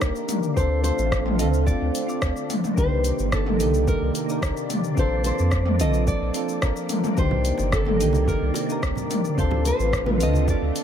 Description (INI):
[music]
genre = sunset chillout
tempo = 109 BPM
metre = 4/4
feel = straight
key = C dorian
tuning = A4 = 439 Hz
[part]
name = nylon-string guitar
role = melody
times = 0.0-10.8 s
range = A4 to Eb5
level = -28 LUFS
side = left 2 dB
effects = ping-pong delay
[part]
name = soft electric-piano-like synth keys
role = accompaniment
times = 0.0-10.8 s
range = Bb3 to D5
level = -28 LUFS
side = moving between left 5 dB and right 8 dB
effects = chorus, tremolo, auto-pan, ping-pong delay
[part]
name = soft string machine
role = sustained chords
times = 0.0-10.8 s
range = C3 to D5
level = -30 LUFS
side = equal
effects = phaser, ensemble chorus
[part]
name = warm sub bass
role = bass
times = 0.0-10.7 s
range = G1 to F2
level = -24 LUFS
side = equal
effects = none
[part]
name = deep house drum kit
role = drums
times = 0.0-10.8 s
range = hi-hat, rim click, shaker, toms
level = -27 LUFS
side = left 1 dB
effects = none
[part]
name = electronic kick drum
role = drums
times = 0.0-10.6 s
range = none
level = -25 LUFS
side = equal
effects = overdrive
[part]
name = bongos and congas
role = percussion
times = 7.2-10.6 s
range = none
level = -34 LUFS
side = right 4 dB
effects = none
[sound]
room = light reverb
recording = none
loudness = -20 LUFS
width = side -9 dB against mid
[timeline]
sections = 0.0-10.8 A section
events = none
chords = 0.0 Cm9; 0.6 Dm7; 2.5 Cm9; 5.0 Bbmaj7; 7.2 Cm9; 9.4 Dm7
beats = 0.02 | 0.57 1.12 1.67 2.22 | 2.77 3.32 3.87 4.42 | 4.97 5.53 6.08 6.63 | 7.18 7.73 8.28 8.83 | 9.38 9.93 10.48